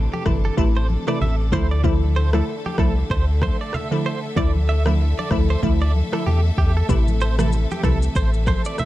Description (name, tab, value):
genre	afrobeats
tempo	95 BPM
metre	4/4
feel	swing 58% on 16ths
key	D minor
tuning	A4 = 440 Hz
part	glassy wavetable pluck	accompaniment	0.0-8.0 s	C3 to E4	-25 LUFS	equal	chorus
part	bright studio string section	sustained chords	0.0-8.9 s	C3 to E5	-30 LUFS	left 1 dB	none
part	sub bass with octave	bass	0.0-8.6 s	G1 to E2	-19 LUFS	equal	none
part	direct-recorded clean electric guitar	riff	0.1-8.9 s	G4 to E5	-29 LUFS	right 5 dB	tremolo, digital delay
part	congas	percussion	0.1-8.9 s	none	-30 LUFS	left 2 dB	none
part	afro-pop drum kit	drums	0.3-8.9 s	kick drum, rim click, shaker	-22 LUFS	equal	vintage 12-bit sampler grit
room	little or no reverb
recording	dark, warm production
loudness	-17 LUFS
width	side -15 dB against mid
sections	0.0-8.9 A section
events	break 0.0-6.9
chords	0.0 Am; 1.5 Dmadd9; 6.9 Am